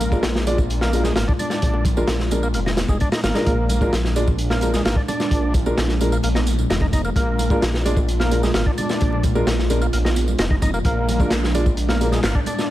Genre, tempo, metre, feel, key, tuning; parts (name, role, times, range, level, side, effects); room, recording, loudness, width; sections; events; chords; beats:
breakbeat, breaks; 130 BPM; 4/4; straight; A4 = 440 Hz
warbly tape-like pad; sustained chords; 0.0-12.7 s; Bb2 to F4; -28 LUFS; equal; chorus, built-in reverb, vintage 12-bit sampler grit, sidechain pumping
overdriven tonewheel organ; riff; 0.0-12.7 s; Ab3 to Eb4; -27 LUFS; equal; chorus vibrato, dub echo
phased detuned saw bass; bass; 0.0-12.3 s; F1 to Bb1; -22 LUFS; equal; phaser
crunchy breakbeat drum kit; drums; 0.0-12.7 s; hi-hat, kick drum, snare drum; -22 LUFS; equal
electronic tambourine and handclaps; drums; 0.0-12.7 s; -36 LUFS; right 3 dB
congas and bongos; percussion; 0.0-12.6 s; -32 LUFS; right 3 dB
dark grand piano; stabs; 0.1-12.2 s; Ab3 to D5; -25 LUFS; equal; dub echo
little or no reverb; -17 LUFS; side -14 dB against mid
0.0-12.7 A section
0.0 Bb7
0.24 0.70 1.16 | 1.62 2.09 2.55 3.01 | 3.47 3.93 4.39 4.86 | 5.32 5.78 6.24 6.70 | 7.16 7.62 8.09 8.55 | 9.01 9.47 9.93 10.39 | 10.86 11.32 11.78 12.24 | 12.70